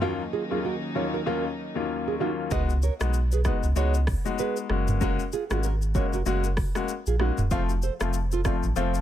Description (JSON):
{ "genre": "afrobeats", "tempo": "96 BPM", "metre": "4/4", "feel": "swing 58% on 16ths", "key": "Db mixolydian", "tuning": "A4 = 440 Hz", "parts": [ { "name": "clear baby grand piano", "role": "accompaniment", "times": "0.0-9.0 s", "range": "Eb2 to Gb4", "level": "-29 LUFS", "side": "left 6 dB", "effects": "none" }, { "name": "dark studio string section", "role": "sustained chords", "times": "0.0-2.5 s", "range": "Eb3 to Eb4", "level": "-34 LUFS", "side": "equal", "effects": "none" }, { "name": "nylon-string guitar", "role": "riff", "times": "0.0-8.9 s", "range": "Eb4 to F5", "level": "-32 LUFS", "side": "right 9 dB", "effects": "ping-pong delay" }, { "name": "saturated sub bass", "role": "bass", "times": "2.5-9.0 s", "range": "Eb1 to Db2", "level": "-25 LUFS", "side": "equal", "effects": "none" }, { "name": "afro-pop drum kit", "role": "drums", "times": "2.5-9.0 s", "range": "hi-hat, kick drum, rim click, shaker, toms", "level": "-30 LUFS", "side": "equal", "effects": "none" } ], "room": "little or no reverb", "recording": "none", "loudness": "-24 LUFS", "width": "side -11 dB against mid", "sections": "0.0-2.5 A section; 2.5-9.0 B section", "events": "break 0.0-2.5", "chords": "0.0 Ebm7; 2.5 Db7sus4; 4.7 Gbadd9; 7.5 F", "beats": "| 0.01 0.64 1.26 1.89 | 2.51 3.14 3.76 4.39 | 5.01 5.64 6.26 6.89 | 7.51 8.14 8.76" }